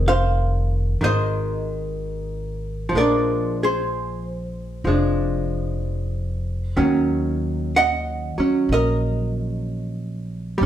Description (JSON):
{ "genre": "jazz ballad", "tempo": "62 BPM", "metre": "4/4", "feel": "swing 68% on 8ths", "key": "unclear", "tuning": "A4 = 440 Hz", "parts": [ { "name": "archtop guitar, miked and amplified", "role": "accompaniment", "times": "0.0-10.7 s", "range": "Eb3 to Gb5", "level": "-22 LUFS", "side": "right 1 dB", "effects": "none" }, { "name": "upright bass", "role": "bass", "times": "0.0-10.7 s", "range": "F1 to Eb2", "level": "-24 LUFS", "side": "equal", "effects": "none" } ], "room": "wet large studio reverb, RT60 0.9 s", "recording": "band playing live in one room", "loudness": "-20 LUFS", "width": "side -11 dB against mid", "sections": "0.0-10.7 A section", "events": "none", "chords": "0.0 Fm7; 2.9 Bb7; 6.8 Ebm7" }